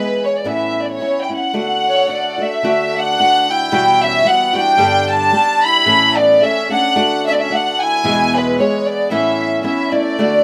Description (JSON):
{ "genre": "mexican folk, mariachi", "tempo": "111 BPM", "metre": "2/4", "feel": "swing 54% on 8ths", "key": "D major", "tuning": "A4 = 440 Hz", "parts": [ { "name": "warm studio violin section", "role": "melody", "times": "0.0-10.4 s", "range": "B4 to B5", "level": "-16 LUFS", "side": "equal", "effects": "none" }, { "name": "flamenco guitar", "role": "accompaniment", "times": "0.0-10.4 s", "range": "E2 to A4", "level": "-22 LUFS", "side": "equal", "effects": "none" }, { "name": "mellow trumpet", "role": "second line", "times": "1.9-10.4 s", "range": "G#3 to E4", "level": "-30 LUFS", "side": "equal", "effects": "none" } ], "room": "light reverb", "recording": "rough home demo mix", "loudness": "-15 LUFS", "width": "mono", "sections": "0.0-2.6 A section; 2.6-10.4 A section", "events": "none", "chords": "0.5 Aadd9; 1.5 D; 3.7 Emadd9; 4.8 G; 5.9 A; 7.0 D; 8.1 E; 9.1 Aadd9" }